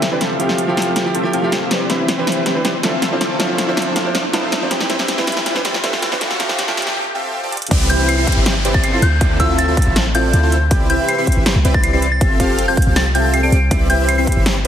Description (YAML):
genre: future bass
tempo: 160 BPM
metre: 4/4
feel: half-time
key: C major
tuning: A4 = 445 Hz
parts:
  - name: ethereal airy pad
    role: sustained chords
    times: 0.0-7.0 s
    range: D3 to C5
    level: -31 LUFS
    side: left 1 dB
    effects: none
  - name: dense compressed supersaw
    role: riff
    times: 0.0-14.7 s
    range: C4 to G5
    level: -20 LUFS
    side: equal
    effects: sidechain pumping, low-pass filter
  - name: big-room dance drum kit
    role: drums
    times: 0.0-14.7 s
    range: crash cymbal, hi-hat, snare drum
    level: -20 LUFS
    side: equal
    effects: studio reverb
  - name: riser and downlifter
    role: sound effects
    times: 0.0-10.7 s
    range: none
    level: -27 LUFS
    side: equal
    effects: none
  - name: bright concert grand piano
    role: accompaniment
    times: 0.1-7.0 s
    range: E3 to C5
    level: -22 LUFS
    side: right 2 dB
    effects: sidechain pumping, dub echo
  - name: warm 808-style bass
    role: bass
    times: 7.7-14.7 s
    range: F1 to D2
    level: -17 LUFS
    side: equal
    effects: tube saturation, sidechain pumping
  - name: electronic kick drum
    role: drums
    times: 7.7-14.3 s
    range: none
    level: -17 LUFS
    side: equal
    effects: studio reverb
  - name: soft synth bell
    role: melody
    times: 7.9-14.2 s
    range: E6 to D7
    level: -20 LUFS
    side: left 1 dB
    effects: chorus, sidechain pumping, dub echo
room: moderate digital room reverb, RT60 1.2 s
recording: heavily compressed radio sound, multiband compression, high-pass filter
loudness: -14 LUFS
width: side -9 dB against mid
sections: 0.0-7.7 A section; 7.7-14.7 B section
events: build-up 0.0-7.7; drum fill 0.0-7.0, 7.5; riser 0.0-7.0; filter sweep on supersaw synth 0.0-7.7; filter sweep 0.0-7.7; break 7.0-7.7; drop 7.7-14.7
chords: 0.2 Fmaj9; 1.7 Cmaj9; 3.0 Dm9; 4.7 Cmaj9; 6.2 Fmaj9; 7.7 Cmaj9; 9.0 Dm9; 10.7 Cmaj9; 12.2 Fmaj9; 13.7 Cmaj9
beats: | 0.21 0.58 0.96 1.33 | 1.71 2.08 2.46 2.83 | 3.21 3.58 3.96 4.33 | 4.71 5.08 5.46 5.83 | 6.21 6.58 6.96 7.33 | 7.71 8.09 8.46 8.84 | 9.21 9.59 9.96 10.34 | 10.71 11.09 11.46 11.84 | 12.21 12.59 12.96 13.34 | 13.71 14.09 14.46